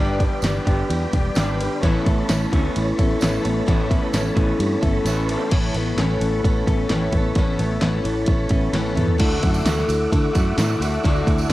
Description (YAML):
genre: folk rock and heartland rock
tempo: 130 BPM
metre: 4/4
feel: straight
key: unclear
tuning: A4 = 439 Hz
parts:
  - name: picked twelve-string acoustic guitar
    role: accompaniment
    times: 0.0-11.5 s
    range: A2 to B4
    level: -25 LUFS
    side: left 3 dB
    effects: cassette tape
  - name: tonewheel organ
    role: sustained chords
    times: 0.0-11.5 s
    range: A3 to D5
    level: -31 LUFS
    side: right 1 dB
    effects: slow rotary speaker, chorus vibrato, cassette tape
  - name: electric guitar through a small old amp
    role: riff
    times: 0.0-11.5 s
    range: G2 to G4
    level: -26 LUFS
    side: right 2 dB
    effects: cassette tape
  - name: fingered electric bass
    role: bass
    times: 0.0-11.5 s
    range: E1 to D3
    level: -23 LUFS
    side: equal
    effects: none
  - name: pop drum kit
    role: drums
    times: 0.2-11.5 s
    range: crash cymbal, kick drum, ride cymbal, snare drum, toms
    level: -22 LUFS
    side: equal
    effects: cassette tape
  - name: tambourine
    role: percussion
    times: 0.4-5.2, 9.2-11.5 s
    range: none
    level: -37 LUFS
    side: right 7 dB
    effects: none
room: little or no reverb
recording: home recording on cassette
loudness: -18 LUFS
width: side -16 dB against mid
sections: 0.0-5.5 A section; 5.5-9.2 B section; 9.2-11.5 C section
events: kick and snare drop out 5.1-5.5; drum fill 8.7-9.2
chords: 0.0 G; 1.8 Aadd9; 9.2 Dadd9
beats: 0.44 0.90 1.36 | 1.82 2.29 2.75 3.21 | 3.67 4.13 4.60 5.06 | 5.52 5.98 6.44 6.90 | 7.36 7.82 8.28 8.74 | 9.20 9.66 10.12 10.58 | 11.03 11.49